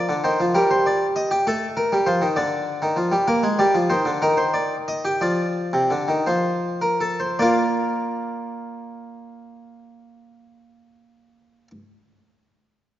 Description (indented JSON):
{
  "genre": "classical, baroque-style two-part invention for harpsichord",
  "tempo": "51-67 BPM (dotted quarters)",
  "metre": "6/8",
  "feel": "straight",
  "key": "Bb major",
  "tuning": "A4 = 440 Hz",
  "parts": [
    { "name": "harpsichord", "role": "solo", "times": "0.0-11.7 s", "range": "C3 to Eb5", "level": "-19 LUFS", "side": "equal", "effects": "none" }
  ],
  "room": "wet scoring stage reverb, RT60 1.8 s",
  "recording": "nothing above 7.5 kHz",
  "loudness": "-19 LUFS",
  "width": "side -13 dB against mid",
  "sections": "0.0-7.4 A section; 7.4-12.1 B section",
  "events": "slowing down 2.3-7.4",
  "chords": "0.0 Bb (rootless); 0.5 Eb/G; 1.4 F7/A; 2.3 Dmadd11; 3.3 Bb7; 4.2 Eb; 5.2 Csus24; 6.2 F; 7.4 Bb"
}